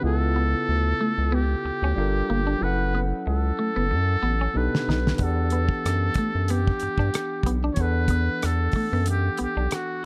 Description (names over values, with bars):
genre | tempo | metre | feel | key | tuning
R&B, neo-soul | 93 BPM | 4/4 | swing 54% on 16ths | E dorian | A4 = 440 Hz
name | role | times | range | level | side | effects
trumpet with metal mute | melody | 0.0-10.1 s | F#4 to C#5 | -30 LUFS | equal | none
barky tine electric piano | accompaniment | 0.0-10.1 s | B2 to F#5 | -32 LUFS | equal | overdrive, tape echo
round analog bass | bass | 0.0-9.7 s | F#1 to G2 | -26 LUFS | equal | none
semi-hollow electric guitar | second line | 0.4-9.7 s | A3 to D#4 | -32 LUFS | equal | phaser
damped 70s drum kit | drums | 4.7-9.9 s | hi-hat, kick drum, rim click, snare drum | -28 LUFS | equal | none
room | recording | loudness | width
little or no reverb | echo-heavy mix | -24 LUFS | mono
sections
0.0-10.1 A section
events
drum fill 3.9-5.2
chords
0.0 C#7alt; 2.0 Gm7; 2.6 F#m7; 4.5 B7alt; 5.2 Em9